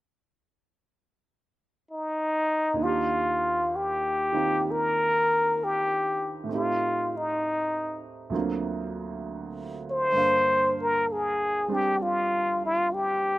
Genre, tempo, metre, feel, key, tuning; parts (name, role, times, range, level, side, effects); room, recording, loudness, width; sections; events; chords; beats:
jazz; 65 BPM; 4/4; swing 69% on 8ths; Eb major; A4 = 440 Hz
trumpet with plunger mute; melody; 1.9-13.4 s; Eb4 to C5; -24 LUFS; left 1 dB
warm concert grand piano; accompaniment; 2.7-13.4 s; D2 to F5; -32 LUFS; right 4 dB
little or no reverb; recorded outdoors, with no room sound; -24 LUFS; side -17 dB against mid
0.0-2.8 A section; 2.8-13.4 B section
0.0 N.C.; 2.8 Ebmaj9; 6.5 Am7b5; 8.3 D7alt; 10.1 Gm7
0.03 0.95 1.86 | 2.79 3.72 4.64 5.56 | 6.48 7.40 8.31 9.23 | 10.14 11.05 11.97 12.88